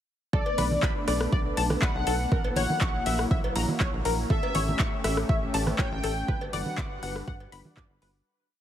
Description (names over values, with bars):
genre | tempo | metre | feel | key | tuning
progressive house | 121 BPM | 4/4 | straight | B minor | A4 = 440 Hz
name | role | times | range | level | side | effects
wide unison lead | melody | 0.3-7.2 s | D5 to G5 | -34 LUFS | left 1 dB | lush chorus, dub echo
warm analog pad | sustained chords | 0.3-8.2 s | F#3 to B4 | -34 LUFS | left 1 dB | lush chorus, sidechain pumping
tight sequenced synth | arpeggios | 0.3-8.1 s | A4 to D6 | -33 LUFS | left 3 dB | chorus, phaser, sidechain pumping, dub echo
tight sequencer bass | bass | 0.3-8.2 s | G1 to G2 | -32 LUFS | equal | tube saturation, sidechain pumping
electronic kick drum | drums | 0.3-7.9 s | none | -28 LUFS | equal | overdrive
cowbell and congas | percussion | 0.5-7.7 s | none | -32 LUFS | right 2 dB | sidechain pumping on perc
deep house drum kit | drums | 0.6-8.1 s | handclaps, hi-hat, rim click | -33 LUFS | left 1 dB | overdrive
room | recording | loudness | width
little or no reverb | heavily compressed radio sound | -24 LUFS | side -10 dB against mid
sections
0.3-8.3 drop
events
drop 0.3-8.3; fade-out 5.6-8.3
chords
0.3 Bm7; 2.3 F#7/A#; 4.3 A7; 6.3 Gmaj7